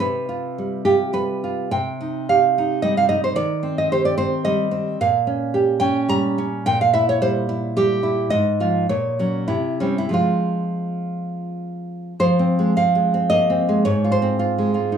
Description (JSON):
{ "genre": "romantic piece for solo classical guitar", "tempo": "82-116 BPM", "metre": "3/4", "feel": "rubato", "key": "C minor, F minor from 5.0 s", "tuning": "A4 = 440 Hz", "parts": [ { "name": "nylon-string guitar", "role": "solo", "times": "0.0-15.0 s", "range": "Ab2 to Bb5", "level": "-18 LUFS", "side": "right 1 dB", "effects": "none" } ], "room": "wet small room reverb, RT60 0.5 s", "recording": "rough home demo mix, small room ambience", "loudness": "-18 LUFS", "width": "side -8 dB against mid", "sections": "0.0-12.2 A section; 12.2-15.0 B section", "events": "none", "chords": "0.0 G7/C; 1.7 Cm; 3.4 Cm/Eb; 5.0 Gdim/Bb; 6.7 C7/Bb; 8.3 Fm/Ab; 8.9 Gb/Bb; 9.5 C; 10.1 Fm; 13.8 Fm/Ab", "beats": "| 0.01 0.58 1.15 | 1.72 2.29 2.83 | 3.36 3.90 4.44 | 4.99 5.53 6.08 | 6.66 7.20 7.74 | 8.30 8.87 9.47 | 10.14 10.86 11.54 | 12.19 12.74 13.29 | 13.84 14.39 14.92" }